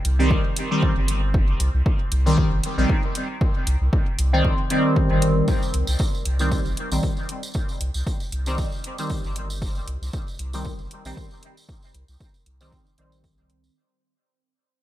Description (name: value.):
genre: dub techno.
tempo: 116 BPM.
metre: 4/4.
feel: swing 55% on 16ths.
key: C minor.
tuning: A4 = 440 Hz.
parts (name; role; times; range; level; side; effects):
electronic hi-hat; drums; 0.0-13.6 s; none; -30 LUFS; equal; overdrive, studio reverb.
soft dub sub bass; bass; 0.1-13.7 s; G1 to C2; -23 LUFS; equal; sidechain pumping.
resonant sweep polysynth; stabs; 0.2-13.7 s; Eb3 to C4; -24 LUFS; equal; chorus, phaser, sidechain pumping, dub echo.
electronic kick drum; drums; 0.3-13.4 s; none; -24 LUFS; equal; overdrive, studio reverb.
tambourine; percussion; 5.5-13.7 s; none; -37 LUFS; right 3 dB; none.
room: light reverb, digital ambience.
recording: echo-heavy mix.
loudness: -20 LUFS.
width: side -14 dB against mid.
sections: 0.0-5.5 A section; 5.5-13.8 B section.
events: fade-out 5.5-13.8; filter sweep on analog polysynth 5.5-13.8.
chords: 0.0 Cm.